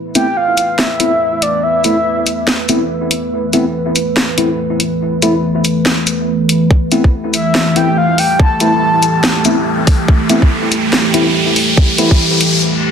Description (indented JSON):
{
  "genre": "deep dubstep",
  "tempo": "142 BPM",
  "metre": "4/4",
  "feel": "swing 60% on 16ths, half-time",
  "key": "A minor",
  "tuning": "A4 = 439 Hz",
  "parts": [
    { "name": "deep dark ambient pad", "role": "sustained chords", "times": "0.0-12.9 s", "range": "E3 to B4", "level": "-16 LUFS", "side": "right 1 dB", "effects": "chorus, built-in reverb" },
    { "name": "breathy flute-like synth lead", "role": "melody", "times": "0.2-2.5, 7.3-9.4 s", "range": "D5 to A5", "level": "-16 LUFS", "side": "equal", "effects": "analog chorus, dub echo" },
    { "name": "bright tine electric piano", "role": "stabs", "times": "0.2-12.1 s", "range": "A3 to E4", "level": "-18 LUFS", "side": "left 2 dB", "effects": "phaser, low-pass filter, dub echo" },
    { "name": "garage drum kit", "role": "drums", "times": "0.2-12.5 s", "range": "hi-hat, shaker, snare drum", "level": "-16 LUFS", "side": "equal", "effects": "none" },
    { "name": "electronic kick drum", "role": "drums", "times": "6.7-12.2 s", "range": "none", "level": "-10 LUFS", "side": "equal", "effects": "none" },
    { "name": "riser and reverse cymbal", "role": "sound effects", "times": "8.2-12.9 s", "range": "none", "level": "-18 LUFS", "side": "equal", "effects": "none" }
  ],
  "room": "moderate digital room reverb, RT60 1.1 s, digital ambience",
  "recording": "dense, heavily limited modern master",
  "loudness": "-11 LUFS",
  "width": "side -7 dB against mid",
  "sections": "0.0-12.9 A section",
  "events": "build-up 0.0-12.9; filter sweep on tine electric piano 0.0-12.9; riser 8.2-12.6; break 12.6; reverse cymbal 12.6",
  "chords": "0.0 Asus2"
}